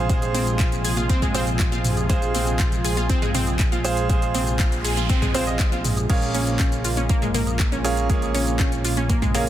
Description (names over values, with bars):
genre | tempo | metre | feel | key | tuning
progressive house | 120 BPM | 4/4 | straight | unclear | A4 = 439 Hz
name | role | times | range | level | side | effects
lush unison pad | sustained chords | 0.0-9.5 s | C3 to Ab4 | -30 LUFS | equal | chorus, sidechain pumping
bright grand piano | stabs | 0.0-9.4 s | Bb3 to Eb5 | -28 LUFS | right 4 dB | sidechain pumping, tape echo
fat analog bass | bass | 0.0-9.5 s | Bb1 | -26 LUFS | equal | sidechain pumping
wide unison pluck | arpeggios | 0.1-9.4 s | Ab3 to Ab5 | -27 LUFS | equal | sidechain pumping, tape echo
electronic kick drum | drums | 0.1-9.3 s | none | -21 LUFS | equal | none
house drum kit | drums | 0.1-9.5 s | crash cymbal, handclaps, hi-hat, shaker | -29 LUFS | left 1 dB | none
electronic woodblock, congas and toms | percussion | 0.2-9.3 s | none | -32 LUFS | right 2 dB | sidechain pumping on perc, sidechain pumping on toms
noise sweep | sound effects | 4.5-6.1 s | none | -34 LUFS | right 4 dB | none
room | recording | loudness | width
light reverb | dense, heavily limited modern master | -19 LUFS | side -12 dB against mid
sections
0.0-9.5 A section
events
noise sweep 4.5-6.1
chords
0.0 Fm/Bb; 6.1 Bbm7